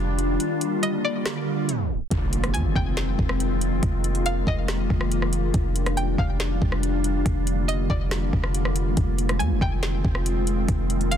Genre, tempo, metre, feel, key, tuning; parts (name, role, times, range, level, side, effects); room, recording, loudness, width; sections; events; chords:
hip hop, atmospheric cloud-rap; 140 BPM; 4/4; half-time; F dorian; A4 = 441 Hz
string-like resonator pluck; melody; 0.0-11.2 s; D5 to Ab5; -32 LUFS; equal; chorus, phaser, ping-pong delay
glassy FM pad; sustained chords; 0.0-11.2 s; D3 to F4; -26 LUFS; left 1 dB; ensemble chorus, built-in reverb, sidechain pumping
warm 808-style bass; bass; 0.0-11.2 s; F1 to F2; -25 LUFS; equal
smooth R&B drum kit; drums; 0.2-11.2 s; hi-hat, kick drum, rim click, snare drum; -26 LUFS; equal; soft clipping on snare
impact; sound effects; 2.1-3.8 s; -34 LUFS; equal
little or no reverb; dense, heavily limited modern master, tape stop; -21 LUFS; side -9 dB against mid
0.0-2.1 A section; 2.1-11.2 B section
kick muted 0.4-2.1; tape stop 1.7-2.1; impact 2.1-3.8
0.4 Gm7; 2.1 Fm7; 3.8 Bb7sus4/F; 5.5 Ebmaj9/F; 7.3 Gm7/F; 9.0 Fm7